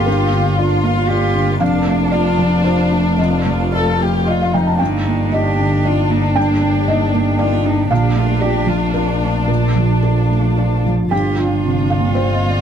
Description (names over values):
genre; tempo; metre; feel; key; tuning
neoclassical piano and strings; 115 BPM; 3/4; rubato; G minor; A4 = 445 Hz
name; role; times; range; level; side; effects
dark chamber violin section; melody; 0.0-12.6 s; D4 to A4; -21 LUFS; left 4 dB; none
warm cello; second line; 0.0-12.6 s; Bb3 to G4; -25 LUFS; right 7 dB; none
felt-muted upright piano; accompaniment; 0.0-12.6 s; F2 to A5; -17 LUFS; right 2 dB; none
shimmering ambient pad; sustained chords; 0.0-12.6 s; F3 to F5; -28 LUFS; equal; chorus, built-in reverb
warm double bass; bass; 0.0-12.6 s; F1 to Bb1; -19 LUFS; left 1 dB; none
room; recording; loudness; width
light reverb; none; -14 LUFS; side -8 dB against mid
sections
0.0-11.1 A section; 11.1-12.6 B section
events
none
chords
0.0 Gm7; 1.6 Dm/F; 4.8 Ebmaj7/G; 7.9 Bbmaj7; 11.1 Gm7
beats
| 0.07 0.58 1.09 | 1.60 2.11 2.64 | 3.18 3.72 4.26 | 4.80 5.33 5.85 | 6.36 6.87 7.39 | 7.90 8.41 8.94 | 9.48 10.03 10.58 | 11.12 11.64 12.17